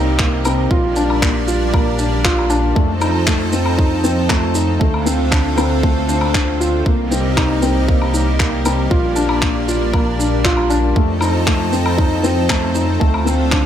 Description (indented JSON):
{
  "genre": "piano and strings electronica",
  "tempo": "117 BPM",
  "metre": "4/4",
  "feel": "straight",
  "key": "unclear",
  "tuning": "A4 = 441 Hz",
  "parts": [
    { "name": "lush unison pad", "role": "sustained chords", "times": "0.0-13.7 s", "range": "C3 to A4", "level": "-22 LUFS", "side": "right 2 dB", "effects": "chorus, sidechain pumping" },
    { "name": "felt-muted upright piano", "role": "riff", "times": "0.0-13.7 s", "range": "A3 to F4", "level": "-18 LUFS", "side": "left 2 dB", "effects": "ping-pong delay" },
    { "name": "dark detuned saw bass", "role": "bass", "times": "0.0-13.7 s", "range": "Bb1 to F2", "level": "-20 LUFS", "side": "right 1 dB", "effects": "sidechain pumping" },
    { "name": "electronic kick drum", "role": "drums", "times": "0.2-13.6 s", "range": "none", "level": "-17 LUFS", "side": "equal", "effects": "none" },
    { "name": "handclaps, shaker and woodblock", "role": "drums", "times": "0.2-13.6 s", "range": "none", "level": "-22 LUFS", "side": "equal", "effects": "none" }
  ],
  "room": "light reverb, small room ambience",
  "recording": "none",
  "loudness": "-14 LUFS",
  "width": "side -10 dB against mid",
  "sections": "0.0-13.7 A section",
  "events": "none",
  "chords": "0.0 Cm7; 0.7 Bb6; 2.8 F7; 4.8 Dm7; 6.9 Cm7; 8.9 Bb6; 11.0 F7; 13.0 Dm7"
}